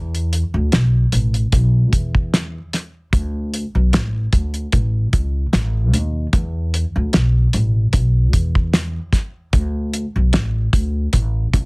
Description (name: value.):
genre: indie pop, bedroom pop.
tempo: 75 BPM.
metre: 4/4.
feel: swing 55% on 16ths.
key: unclear.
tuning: A4 = 438 Hz.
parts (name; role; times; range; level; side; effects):
upright bass; bass; 0.0-11.7 s; A1 to E2; -17 LUFS; equal; none.
cloth-damped thuddy drum kit; drums; 0.1-11.7 s; hi-hat, kick drum, snare drum; -17 LUFS; equal; none.
room: little or no reverb.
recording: heavily compressed radio sound.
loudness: -16 LUFS.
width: side -35 dB against mid.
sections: 0.0-11.7 A section.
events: none.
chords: none.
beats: 0.72 1.52 2.32 | 3.12 3.93 4.73 5.53 | 6.33 7.13 7.93 8.73 | 9.54 10.34 11.14.